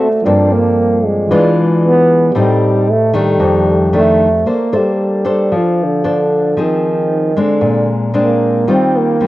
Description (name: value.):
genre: bossa nova.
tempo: 114 BPM.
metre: 4/4.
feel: straight.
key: Bb major from 4.5 s.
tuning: A4 = 440 Hz.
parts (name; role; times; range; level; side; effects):
breathy trombone; melody; 0.0-9.3 s; D3 to D4; -14 LUFS; right 1 dB; cassette tape.
nylon-string guitar; accompaniment; 0.0-9.3 s; F2 to C5; -14 LUFS; left 2 dB; cassette tape.
tine electric piano; accompaniment; 0.0-4.5 s; E3 to Eb5; -19 LUFS; right 2 dB; cassette tape.
room: light reverb, studio reverb.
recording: home recording on cassette.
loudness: -10 LUFS.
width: side -16 dB against mid.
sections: 0.0-4.5 A section; 4.5-9.3 B section.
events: none.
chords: 0.3 Gm11; 1.3 E7b9; 2.4 Am7b5; 3.4 F13; 4.5 Bbmaj9; 6.6 Fm7; 7.6 Bb9; 8.7 Eb69.